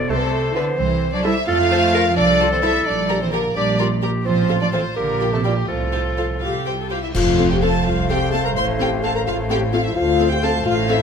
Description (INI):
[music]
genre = cinematic, playful, whimsical film cue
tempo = 86 BPM (dotted quarters)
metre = 6/8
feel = straight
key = F major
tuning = A4 = 440 Hz
[part]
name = bright clarinet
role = second line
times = 0.0-11.0 s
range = F4 to D5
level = -27 LUFS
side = left 2 dB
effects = none
[part]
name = warm chamber violin section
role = second line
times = 0.0-11.0 s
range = Bb4 to C6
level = -27 LUFS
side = left 1 dB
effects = none
[part]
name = warm chamber viola section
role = accompaniment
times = 0.0-11.0 s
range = C4 to A4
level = -28 LUFS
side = equal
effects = none
[part]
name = mellow French horn section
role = sustained chords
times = 0.0-11.0 s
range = E4 to C5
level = -24 LUFS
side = left 6 dB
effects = none
[part]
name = warm studio cello section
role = bass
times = 0.0-11.0 s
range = C2 to A3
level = -24 LUFS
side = right 2 dB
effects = none
[part]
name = warm chamber violin section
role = melody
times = 0.1-11.0 s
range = F4 to F5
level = -25 LUFS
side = left 3 dB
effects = none
[part]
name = dark bassoon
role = accompaniment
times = 0.1-11.0 s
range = F3 to F4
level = -23 LUFS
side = right 2 dB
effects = none
[part]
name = clear chamber double bass section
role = bass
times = 0.1-11.0 s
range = F1 to F2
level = -24 LUFS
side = right 3 dB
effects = none
[part]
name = cymbal swell, clash cymbals and concert bass drum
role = percussion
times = 4.3-8.1 s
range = none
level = -27 LUFS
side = left 1 dB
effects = none
[part]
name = mellow hollow silver concert flute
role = second line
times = 7.1-11.0 s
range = F5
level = -29 LUFS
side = left 6 dB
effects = none
[sound]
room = moderate scoring stage reverb, RT60 1.6 s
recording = none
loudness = -16 LUFS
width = side -6 dB against mid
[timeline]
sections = 0.0-7.2 A section; 7.2-11.0 B section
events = band accent 7.2-7.6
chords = 0.1 Am/C; 1.5 F; 2.9 Gm/Bb; 4.3 F/A; 5.0 Gm7/Bb; 5.7 F/C; 6.4 C; 7.2 F; 8.6 F/A; 10.0 Dm7